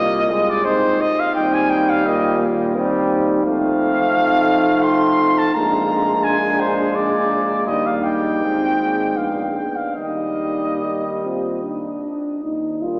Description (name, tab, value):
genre	classical, hymn-like piece for brass band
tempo	70-88 BPM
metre	3/4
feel	rubato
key	Eb major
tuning	A4 = 440 Hz
part	mellow cornet	melody	0.0-13.0 s	C5 to C6	-23 LUFS	equal	none
part	dark French horn section	second line	0.0-13.0 s	D4 to Bb4	-25 LUFS	equal	none
part	clear trombone	accompaniment	0.0-13.0 s	G3 to Bb3	-26 LUFS	equal	none
part	mellow euphonium	accompaniment	0.0-13.0 s	G3 to F4	-28 LUFS	equal	none
part	warm tuba	bass	0.0-13.0 s	Ab1 to F2	-32 LUFS	equal	none
room	wet cathedral reverb, RT60 4.9 s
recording	none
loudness	-19 LUFS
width	mono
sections	0.0-12.4 A section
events	none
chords	0.0 Cm7; 1.4 Cm/Eb; 3.4 F7; 5.6 Bb7; 7.7 Eb; 8.4 Ab; 9.2 Bb7b9; 10.0 Eb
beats	0.66 | 1.36 2.06 2.75 | 3.44 4.13 4.85 | 5.55 6.25 6.97 | 7.69 8.42 9.17 | 9.97 10.82 11.64 | 12.45